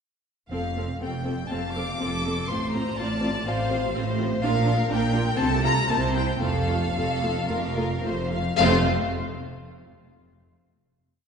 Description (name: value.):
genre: quick classical-period movement for string orchestra.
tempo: 110-125 BPM.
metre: 4/4.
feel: rubato.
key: F major.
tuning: A4 = 439 Hz.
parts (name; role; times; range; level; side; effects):
rich chamber violin section; melody; 0.5-8.9 s; F5 to D6; -28 LUFS; left 3 dB; none.
rich chamber viola section; accompaniment; 0.5-8.9 s; A3 to A4; -30 LUFS; equal; none.
rich studio cello section; bass; 0.5-8.9 s; F2 to C3; -29 LUFS; right 2 dB; none.
warm chamber double bass section; bass; 0.5-8.9 s; F1 to C2; -29 LUFS; right 3 dB; none.
clear chamber violin section; second line; 1.5-8.9 s; F4 to F5; -31 LUFS; left 3 dB; none.
room: wet scoring stage reverb, RT60 2.1 s.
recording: heard from further back in the room, nothing above 10.4 kHz.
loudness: -22 LUFS.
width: side -6 dB against mid.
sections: 0.5-8.6 A section; 8.6-10.7 final chord.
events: slowing down 3.5-8.6.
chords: 0.5 F; 2.5 F/A; 4.4 Bb; 5.4 F/C; 5.9 C7; 6.4 F.